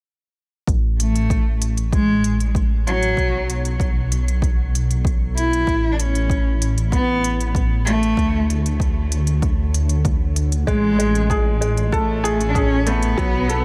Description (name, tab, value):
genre	piano and strings electronica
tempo	96 BPM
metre	4/4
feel	straight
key	A major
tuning	A4 = 442 Hz
part	granular cloud pad	sustained chords	1.8-13.6 s	A3 to G#5	-44 LUFS	equal	none
part	dark detuned saw bass	bass	0.7-13.6 s	A1 to D2	-23 LUFS	equal	sidechain pumping
part	electronic hi-hat	drums	0.7-13.6 s	none	-32 LUFS	equal	none
part	electronic kick drum	drums	0.7-13.3 s	none	-24 LUFS	equal	overdrive
part	warm cello	melody	1.0-13.6 s	F#3 to E4	-25 LUFS	equal	none
part	bright upright piano	riff	10.7-13.6 s	F#3 to A4	-24 LUFS	equal	none
room	little or no reverb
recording	none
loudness	-19 LUFS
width	mono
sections	0.7-13.6 A section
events	none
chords	0.7 Amaj7; 3.2 Bm7; 5.7 Amaj7; 8.2 Dmaj7; 10.7 Amaj7